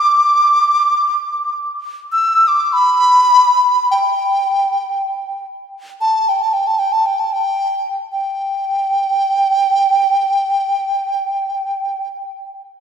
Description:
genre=chinese traditional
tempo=free time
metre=none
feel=none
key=G gong mode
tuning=A4 = 440 Hz
part: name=mellow hollow large dizi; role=melody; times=0.0-12.1 s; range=G5 to E6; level=-13 LUFS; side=equal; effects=none
room=wet concert hall reverb, RT60 2.5 s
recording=minimal, uncompressed stereo recording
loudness=-13 LUFS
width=side -7 dB against mid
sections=0.0-8.1 A section; 8.1-11.3 B section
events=slowing down 1.8-8.1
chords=none

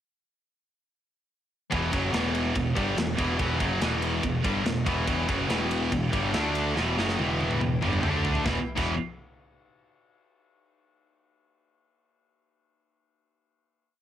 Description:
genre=heavy metal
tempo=142 BPM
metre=4/4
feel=straight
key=E minor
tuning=A4 = 439 Hz
part: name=high-gain distorted guitar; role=riff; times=1.7-8.9 s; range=E2 to D4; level=-31 LUFS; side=left 7 dB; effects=distortion, cassette tape
part: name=high-gain distorted guitar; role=riff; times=1.7-8.9 s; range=E2 to D4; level=-30 LUFS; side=right 7 dB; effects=distortion, cassette tape
part: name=sludgy distorted guitar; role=riff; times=1.7-8.9 s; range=E2 to D4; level=-32 LUFS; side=equal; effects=overdrive, cassette tape
part: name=growling picked electric bass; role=bass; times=1.7-9.0 s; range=E1 to D2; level=-31 LUFS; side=equal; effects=overdrive
part: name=tight metal drum kit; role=drums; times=1.7-8.9 s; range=crash cymbal, kick drum, ride cymbal, snare drum, toms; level=-31 LUFS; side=equal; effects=cassette tape
part: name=bright chamber string section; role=sustained chords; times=5.1-8.6 s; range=D4 to A5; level=-39 LUFS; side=left 1 dB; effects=none
room=little or no reverb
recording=home recording on cassette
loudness=-24 LUFS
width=side -10 dB against mid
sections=1.7-8.4 riff; 8.4-10.1 final chord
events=drum fill 6.8-8.4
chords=1.7 Em; 6.3 D5; 6.8 Em; 8.0 D5; 8.4 E5

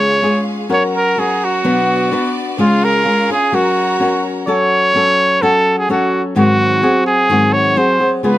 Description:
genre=mexican folk, mariachi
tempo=127 BPM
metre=2/4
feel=straight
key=F# major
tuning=A4 = 442 Hz
part: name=clear trumpet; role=melody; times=0.0-8.4 s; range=E#4 to C#5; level=-14 LUFS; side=right 1 dB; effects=none
part: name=flamenco guitar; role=accompaniment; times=0.0-8.4 s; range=G#2 to B4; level=-16 LUFS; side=left 2 dB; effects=none
part: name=bright symphonic violin section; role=sustained chords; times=0.0-4.5, 8.2-8.4 s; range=B3 to A#5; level=-25 LUFS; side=right 1 dB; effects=none
room=light reverb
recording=close, detailed microphones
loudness=-12 LUFS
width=side -14 dB against mid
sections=0.0-4.5 A section; 4.5-8.4 B section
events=none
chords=0.0 C#; 0.7 F#; 1.6 Bm; 2.6 C#; 3.5 F#; 4.5 F#m; 6.4 G#7

